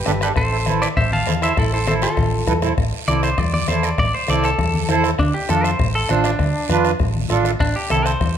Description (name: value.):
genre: latin, cumbia.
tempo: 199 BPM.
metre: 4/4.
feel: straight.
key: A minor.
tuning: A4 = 440 Hz.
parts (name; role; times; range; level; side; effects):
clean electric guitar; melody; 0.0-8.4 s; D4 to A5; -22 LUFS; equal; spring reverb, plate reverb.
accordion; accompaniment; 0.1-8.1 s; C4 to C5; -22 LUFS; right 6 dB; none.
hollow-body short-scale fingered electric bass; bass; 0.1-8.4 s; G1 to F2; -22 LUFS; equal; none.
bombo; percussion; 0.1-8.4 s; none; -24 LUFS; left 3 dB; none.
congas; percussion; 0.1-8.4 s; none; -26 LUFS; left 5 dB; none.
guiro; percussion; 0.1-8.4 s; none; -32 LUFS; right 8 dB; none.
room: light reverb.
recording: none.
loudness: -16 LUFS.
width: side -9 dB against mid.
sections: 0.0-2.8 A section; 2.8-8.4 B section.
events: drum fill 2.2-2.8; clean electric guitar solo 2.8-8.4.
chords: 0.4 Am; 5.2 Dm; 7.6 Am.